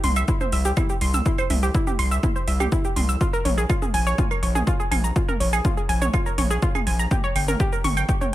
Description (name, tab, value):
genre	melodic techno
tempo	123 BPM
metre	4/4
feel	straight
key	unclear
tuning	A4 = 440 Hz
part	warbly dusty pluck	arpeggios	0.0-8.3 s	E4 to E6	-25 LUFS	equal	chorus, cassette tape, sidechain pumping, tape echo
part	gritty driven synth bass	bass	0.0-8.0 s	G1 to C2	-22 LUFS	equal	sidechain pumping
part	house drum kit	drums	0.0-8.3 s	claves, hi-hat, shaker, toms	-28 LUFS	right 3 dB	sidechain pumping on toms, sidechain pumping on perc, sidechain pumping on hats
part	electronic kick drum	drums	0.3-8.2 s	none	-24 LUFS	equal	none
room	digital ambience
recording	none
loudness	-20 LUFS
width	side -14 dB against mid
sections	0.0-8.3 A section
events	none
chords	0.0 C; 3.2 Bbm7; 7.1 G(b5, no3)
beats	0.28 0.77 | 1.26 1.75 2.23 2.72 | 3.21 3.70 4.18 4.67 | 5.16 5.65 6.13 6.62 | 7.11 7.60 8.09